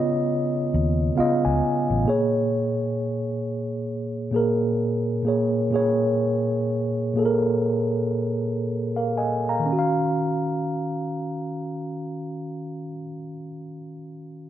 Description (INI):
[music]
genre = R&B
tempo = 57-67 BPM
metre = 4/4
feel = swing 60% on 16ths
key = Eb minor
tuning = A4 = 440 Hz
[part]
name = mellow tine electric piano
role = accompaniment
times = 0.0-14.5 s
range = Bb2 to Bb5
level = -22 LUFS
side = equal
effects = medium stereo tremolo
[part]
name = vintage muted fingered electric bass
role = bass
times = 0.7-2.0 s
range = A1 to Eb2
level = -23 LUFS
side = left 1 dB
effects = none
[sound]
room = light reverb, small room ambience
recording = none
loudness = -22 LUFS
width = side -12 dB against mid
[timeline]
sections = 0.0-9.7 A section; 9.7-13.9 B section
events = tine electric piano fill 0.7-2.1; slowing down 2.1-9.7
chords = 0.0 Db9; 2.1 Bbm7; 9.7 Ebm9